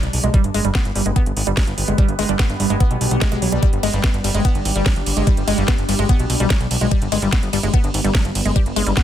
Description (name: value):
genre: psychedelic trance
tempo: 146 BPM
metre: 4/4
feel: straight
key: G major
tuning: A4 = 440 Hz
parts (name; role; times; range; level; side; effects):
- evolving wavetable pad; sustained chords; 0.0-9.0 s; G3 to D4; -26 LUFS; right 1 dB; phaser, built-in reverb, sidechain pumping
- fat analog bass; bass; 0.0-8.9 s; G1 to B1; -21 LUFS; equal; none
- garage drum kit; drums; 0.0-9.0 s; hi-hat, ride cymbal, snare drum; -24 LUFS; right 1 dB; small room reverb
- woody wave-folded pluck; riff; 0.2-9.0 s; F#3 to B3; -23 LUFS; moving between left 7 dB and right 3 dB; chorus, auto-pan, sidechain pumping, ping-pong delay
- electronic kick drum; drums; 0.3-9.0 s; none; -17 LUFS; equal; small room reverb
room: digital ambience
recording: dense, heavily limited modern master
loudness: -16 LUFS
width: side -11 dB against mid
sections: 0.0-9.0 A section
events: none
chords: 0.0 G5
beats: | 0.34 0.75 1.16 1.57 | 1.98 2.39 2.80 3.21 | 3.63 4.04 4.45 4.86 | 5.27 5.68 6.09 6.50 | 6.91 7.33 7.74 8.15 | 8.56 8.97